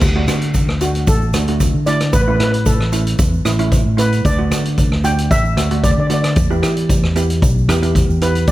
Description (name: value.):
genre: calypso.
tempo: 113 BPM.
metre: 4/4.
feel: straight.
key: D major.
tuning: A4 = 440 Hz.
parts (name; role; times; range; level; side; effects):
fingered electric bass; bass; 0.0-8.5 s; A1 to E3; -17 LUFS; equal; none.
street-band drum kit; drums; 0.0-8.5 s; crash cymbal, hi-hat, kick drum, rim click; -17 LUFS; equal; none.
egg shaker; percussion; 0.0-8.5 s; none; -31 LUFS; right 4 dB; none.
steel pan; accompaniment; 0.2-8.5 s; A3 to G4; -22 LUFS; right 3 dB; none.
steel pan; melody; 0.8-8.5 s; F#4 to G5; -22 LUFS; equal; ping-pong delay.
room: light reverb.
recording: none.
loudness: -13 LUFS.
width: side -16 dB against mid.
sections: 0.0-8.5 A section.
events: steel pan solo 0.0-8.5.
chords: 0.0 D; 2.1 A; 4.2 D; 6.4 Em.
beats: | 0.02 0.55 1.07 1.60 | 2.13 2.66 3.19 3.72 | 4.25 4.78 5.31 5.84 | 6.37 6.89 7.42 7.95 | 8.48.